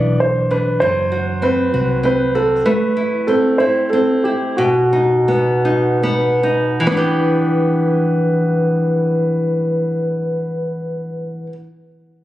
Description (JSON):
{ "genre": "pop", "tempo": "46-65 BPM (dotted quarters)", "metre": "6/8", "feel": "straight", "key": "E minor", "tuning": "A4 = 439 Hz", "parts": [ { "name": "warm concert grand piano", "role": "melody", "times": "0.0-11.5 s", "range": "F#4 to D5", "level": "-19 LUFS", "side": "right 1 dB", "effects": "none" }, { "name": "flamenco guitar", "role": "accompaniment", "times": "0.0-11.6 s", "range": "B2 to G4", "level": "-17 LUFS", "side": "equal", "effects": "none" }, { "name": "vintage muted fingered electric bass", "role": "bass", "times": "0.0-2.6 s", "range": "F#1 to C2", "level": "-21 LUFS", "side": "equal", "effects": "none" } ], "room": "moderate plate reverb, RT60 2.5 s", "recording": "recorded on a phone in the room, club reverb, compression", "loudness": "-14 LUFS", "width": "side -14 dB against mid", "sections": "0.0-6.9 A section; 6.9-12.0 B section", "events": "slowing down 2.7-6.9", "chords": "0.0 E5; 0.8 F#(b5, no3); 2.7 Am; 4.6 B; 6.9 Em7" }